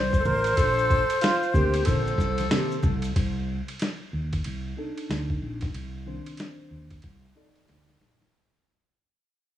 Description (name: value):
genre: hip hop, jazz-hop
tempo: 93 BPM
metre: 4/4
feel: swing 62% on 16ths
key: C dorian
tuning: A4 = 440 Hz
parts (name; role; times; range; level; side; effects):
- breathy mellow silver concert flute; melody; 0.0-2.5 s; C5; -26 LUFS; equal; tape echo
- fretless electric bass; bass; 0.0-8.3 s; A1 to C3; -29 LUFS; equal; none
- boom bap sampler-style drum kit; drums; 0.1-8.3 s; hi-hat, kick drum, ride cymbal, snare drum; -28 LUFS; equal; none
- maracas and congas; percussion; 0.1-3.2 s; none; -36 LUFS; equal; none
- mellow tenor saxophone; second line; 0.2-3.2 s; F4 to Bb4; -28 LUFS; equal; none
- mellow tine electric piano; accompaniment; 1.5-8.3 s; C3 to A5; -35 LUFS; left 2 dB; analog chorus, low-pass filter
room: small room ambience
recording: rough home demo mix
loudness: -23 LUFS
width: side -11 dB against mid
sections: 0.0-3.2 A section; 3.2-8.3 B section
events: fade-out 3.2-8.3; filter sweep on tine electric piano 3.2-8.3; tine electric piano fill 7.0-8.3; drum fill 7.7-8.3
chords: 0.0 Bbmaj9; 2.5 Cm7; 3.2 Cm69